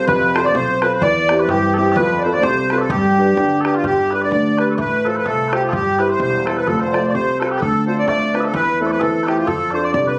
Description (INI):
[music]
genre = celtic folk, Celtic polka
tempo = 128 BPM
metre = 2/4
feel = swing 57% on 8ths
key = G mixolydian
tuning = A4 = 438 Hz
[part]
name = accordion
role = melody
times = 0.0-10.2 s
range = F4 to D5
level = -21 LUFS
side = equal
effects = light tremolo tuning
[part]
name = mellow small bagpipes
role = second line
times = 0.0-10.2 s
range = F4 to E5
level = -26 LUFS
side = equal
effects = slapback echo
[part]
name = warm upright piano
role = accompaniment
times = 0.0-10.2 s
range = C3 to C5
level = -22 LUFS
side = equal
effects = none
[part]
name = upright bass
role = bass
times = 0.0-10.2 s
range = E1 to G2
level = -26 LUFS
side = equal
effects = none
[part]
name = bodhran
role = percussion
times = 0.1-10.1 s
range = none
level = -28 LUFS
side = equal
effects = none
[sound]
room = light reverb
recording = recorded on a phone in the room, club reverb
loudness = -17 LUFS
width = mono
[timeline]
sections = 0.0-3.8 A section; 3.8-10.2 B section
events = none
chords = 0.0 F; 1.0 C/E; 2.0 F; 2.9 G; 4.8 F/A; 5.7 C/G; 6.7 F; 7.6 Dm7; 8.5 Am/E; 9.5 F6